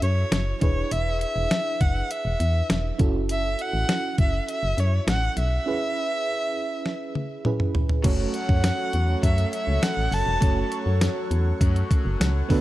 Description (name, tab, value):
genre	1980s-style pop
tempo	101 BPM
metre	4/4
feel	straight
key	F# minor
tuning	A4 = 441 Hz
part	rich erhu	melody	0.0-10.7 s	C#5 to A5	-28 LUFS	equal	digital delay
part	FM electric piano with tremolo	accompaniment	0.0-12.6 s	A3 to C#5	-31 LUFS	right 4 dB	none
part	solid FM bass	bass	0.0-12.6 s	E1 to F#2	-24 LUFS	equal	none
part	clean 12-bit digital drum machine	drums	0.0-12.6 s	crash cymbal, hi-hat, kick drum, snare drum, tambourine, toms	-24 LUFS	equal	none
part	overdriven electric guitar	accompaniment	8.0-12.6 s	D3 to F#4	-36 LUFS	left 5 dB	wide subtle chorus
part	phased analog pad	sustained chords	8.1-12.6 s	A4 to C#6	-35 LUFS	equal	phaser, chorus
room	light reverb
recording	dark, warm production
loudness	-21 LUFS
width	side -16 dB against mid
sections	0.0-8.0 A section; 8.0-12.6 B section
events	break 5.7-8.0; drum fill 6.9-8.0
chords	0.0 F#m7; 0.6 E7; 3.0 F#m7; 5.7 C#m7; 8.0 F#m